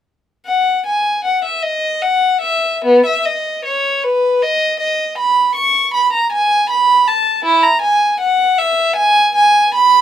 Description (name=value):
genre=classical, baroque-style suite movement for unaccompanied violin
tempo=78 BPM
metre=3/4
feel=rubato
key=B major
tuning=A4 = 440 Hz
part: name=rich violin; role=solo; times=0.5-10.0 s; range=B3 to C#6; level=-12 LUFS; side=equal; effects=none
room=little or no reverb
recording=close, detailed microphones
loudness=-12 LUFS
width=side -10 dB against mid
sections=0.5-10.0 A section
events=none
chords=none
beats=| 0.46 1.25 2.02 | 2.84 3.65 4.42 | 5.18 5.93 6.69 | 7.44 8.20 8.97 | 9.74